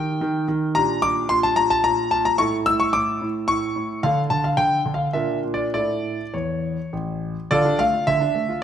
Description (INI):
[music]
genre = classical-period piano sonatina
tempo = 99-111 BPM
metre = 3/4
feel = rubato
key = D minor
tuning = A4 = 440 Hz
[part]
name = warm concert grand piano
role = solo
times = 0.0-8.6 s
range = A1 to E6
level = -19 LUFS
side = equal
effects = none
[sound]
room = moderate recital hall reverb, RT60 1.5 s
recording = none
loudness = -19 LUFS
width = side -9 dB against mid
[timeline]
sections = 0.0-7.5 A section; 7.5-8.6 B section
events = none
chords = 0.0 Eb; 0.8 Gm/Bb; 2.4 A; 4.0 D5; 5.1 Bb; 5.7 A; 7.5 Dm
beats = 0.21 | 0.76 1.30 1.84 | 2.39 2.93 3.48 | 4.03 4.58 5.15 | 5.75 6.34 6.93 | 7.51 8.07